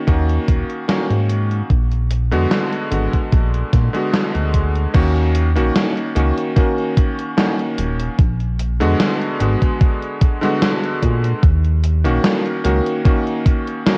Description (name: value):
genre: vaporwave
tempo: 74 BPM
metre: 4/4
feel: swing 53% on 16ths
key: Eb minor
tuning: A4 = 443 Hz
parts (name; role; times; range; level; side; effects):
- bright electric grand piano; accompaniment; 0.0-14.0 s; D3 to Gb4; -23 LUFS; equal; subtle chorus, tape echo
- chorused synth bass; bass; 0.1-12.8 s; Eb1 to Bb2; -20 LUFS; equal; tube saturation
- electronic kick drum; drums; 0.1-13.6 s; none; -18 LUFS; equal; vintage 12-bit sampler grit
- gated 80s digital drum machine; drums; 0.1-14.0 s; crash cymbal, hi-hat, snare drum; -23 LUFS; equal; gated reverb, gated reverb snare, vintage 12-bit sampler grit
room: digital ambience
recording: cassette tape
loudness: -18 LUFS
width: mono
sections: 0.0-4.9 A section; 4.9-14.0 B section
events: none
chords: 0.0 Ebm7; 1.7 Bb7b9b13; 4.9 Ebm7; 8.2 Bb7b9b13; 11.4 Ebm7